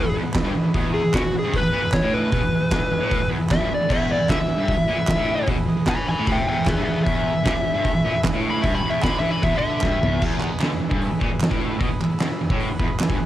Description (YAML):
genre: garage rock duo or trio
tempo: 152 BPM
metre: 4/4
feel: straight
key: E major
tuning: A4 = 440 Hz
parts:
  - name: fuzz lead guitar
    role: melody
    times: 0.0-10.2 s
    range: F#4 to B5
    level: -24 LUFS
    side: left 1 dB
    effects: distortion, cassette tape
  - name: combo organ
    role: sustained chords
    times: 0.0-13.3 s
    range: G#4 to B5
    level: -34 LUFS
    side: right 1 dB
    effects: none
  - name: fuzz guitar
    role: riff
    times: 0.0-13.3 s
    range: E2 to E3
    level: -23 LUFS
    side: right 1 dB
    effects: distortion
  - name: oversized low-tuned drum kit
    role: drums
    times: 0.3-13.2 s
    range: crash cymbal, hi-hat, kick drum, snare drum, toms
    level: -24 LUFS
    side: equal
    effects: cassette tape
  - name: group handclap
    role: percussion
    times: 0.3-13.1 s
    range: none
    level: -32 LUFS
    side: right 5 dB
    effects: none
room: light reverb, studio reverb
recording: home recording on cassette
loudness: -19 LUFS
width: side -13 dB against mid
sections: 0.0-10.2 A section; 10.2-13.3 B section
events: lead electric guitar solo 0.0-10.2; drum fill 9.8-10.2; transistor combo organ fill 12.6-13.3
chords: 0.0 E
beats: 0.34 | 0.74 1.13 1.53 1.92 | 2.32 2.71 3.11 3.50 | 3.90 4.29 4.69 5.08 | 5.48 5.87 6.27 6.67 | 7.06 7.46 7.85 8.25 | 8.64 9.04 9.43 9.83 | 10.22 10.62 11.01 11.41 | 11.80 12.20 12.59 12.99